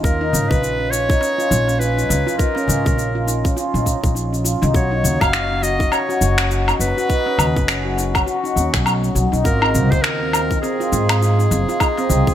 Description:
organic downtempo; 102 BPM; 4/4; swing 59% on 16ths; Eb minor; A4 = 440 Hz
clear clarinet; melody; 0.0-12.3 s; Ab4 to F5; -22 LUFS; equal; digital delay
handpan; arpeggios; 0.0-12.3 s; C4 to F#4; -22 LUFS; equal; digital delay
upright bass; bass; 0.0-12.3 s; F#1 to Ab2; -20 LUFS; equal; sidechain pumping
electronic kick drum; drums; 0.0-12.3 s; -19 LUFS; equal
electronic shaker, woodblock and finger snaps; drums; 0.1-12.3 s; -22 LUFS; left 1 dB; gated reverb
darbuka; percussion; 0.3-12.3 s; -27 LUFS; left 2 dB
moderate plate reverb, RT60 2.1 s; bright 1980s-style digital production; -15 LUFS; side -11 dB against mid
0.0-12.3 A section
0.0 Eb7sus2; 4.7 Badd9; 9.5 Ab69

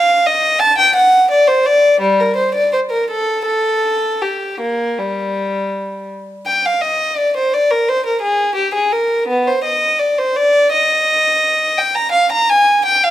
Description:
classical, baroque-style suite movement for unaccompanied violin; 83 BPM; 4/4; uneven beats, rubato; G minor; A4 = 439 Hz
rich violin; solo; 0.0-13.1 s; G3 to Bb5; -13 LUFS; equal
moderate recital hall reverb, RT60 1.6 s; close, detailed microphones; -12 LUFS; side -13 dB against mid
0.0-6.5 A section; 6.5-13.1 A section

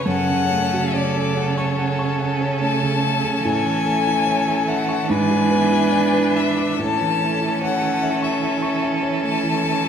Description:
classical, slow romantic movement for piano quintet; 72 BPM; 4/4; rubato; A4 = 440 Hz
rich violin; melody; 0.0-9.9 s; C#5 to A5; -23 LUFS; left 7 dB
rich cello; second line; 0.0-9.9 s; C#3 to E3; -26 LUFS; right 6 dB
rich violin; second line; 0.0-9.9 s; A4 to B4; -26 LUFS; left 3 dB
clear viola; accompaniment; 0.0-9.9 s; C#4 to D4; -24 LUFS; right 3 dB
dark grand piano; accompaniment; 0.0-9.9 s; F#2 to D6; -23 LUFS; right 2 dB
wet recital hall reverb, RT60 1.7 s; -17 LUFS; side -8 dB against mid
0.0-9.9 A section
0.1 F#m; 3.4 A; 5.1 E7/G#; 6.8 A

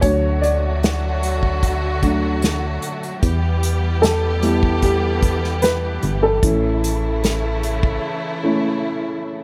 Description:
pop ballad; 75 BPM; 4/4; straight; A4 = 442 Hz
dark upright piano; accompaniment; 0.0-9.4 s; F#3 to D5; -23 LUFS; equal
warm studio string section; sustained chords; 0.0-9.4 s; C#3 to G4; -28 LUFS; equal
solid FM bass; bass; 0.0-8.0 s; G1 to E2; -24 LUFS; equal
unplugged drum kit; drums; 0.0-8.0 s; hi-hat, kick drum, snare drum; -22 LUFS; equal
small room ambience; -19 LUFS; mono
0.0-9.4 A section
upright piano solo 0.0-9.4; break 8.0-9.4
0.0 D; 3.2 Em; 6.4 A

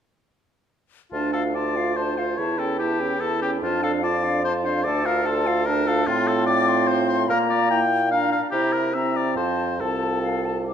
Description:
quick classical-period movement for wind quintet; 145 BPM; 3/4; rubato; D minor, F major from 6.1 s; A4 = 442 Hz
bright concert flute; melody; 1.1-10.7 s; F5 to D6; -28 LUFS; left 8 dB
warm oboe; second line; 1.1-10.7 s; F4 to G5; -25 LUFS; left 3 dB
bright clarinet; accompaniment; 1.1-10.7 s; Bb3 to A4; -28 LUFS; right 7 dB
warm French horn; accompaniment; 1.1-10.7 s; C#4 to F4; -28 LUFS; equal
mellow bassoon; bass; 1.1-10.7 s; C2 to C3; -26 LUFS; right 2 dB
wet recital hall reverb, RT60 1.5 s; -20 LUFS; side -8 dB against mid
1.1-10.7 A section
1.1 Dm; 2.4 A7/E; 3.6 Dm/F; 4.9 Dm; 6.1 F/A; 7.3 Gm/Bb; 8.5 C7; 9.4 F; 9.8 F/C

